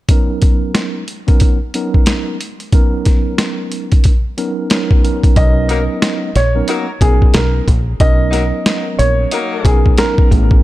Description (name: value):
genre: hip hop, boom-bap hip-hop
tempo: 91 BPM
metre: 4/4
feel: swing 60% on 16ths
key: B major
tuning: A4 = 441 Hz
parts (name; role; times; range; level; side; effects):
- mellow tine electric piano; accompaniment; 0.1-10.6 s; F#3 to A#4; -20 LUFS; right 1 dB; medium stereo tremolo, cassette tape, high-pass filter, low-pass filter
- boom bap sampler-style drum kit; drums; 0.1-10.6 s; hi-hat, kick drum, snare drum; -12 LUFS; equal; none
- warm upright piano; melody; 5.4-10.3 s; G#4 to D#5; -19 LUFS; right 1 dB; high-pass filter, low-pass filter, tape echo
- deep dub fingered electric bass; bass; 5.4-10.6 s; A1 to B1; -16 LUFS; equal; none
- mellow horn section; stabs; 5.7-9.8 s; F#3 to A#4; -23 LUFS; left 4 dB; high-pass filter, low-pass filter, tape echo
room: little or no reverb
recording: dark, warm production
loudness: -11 LUFS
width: side -16 dB against mid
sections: 0.1-5.4 A section; 5.4-10.6 B section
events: none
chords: 0.1 Bmaj9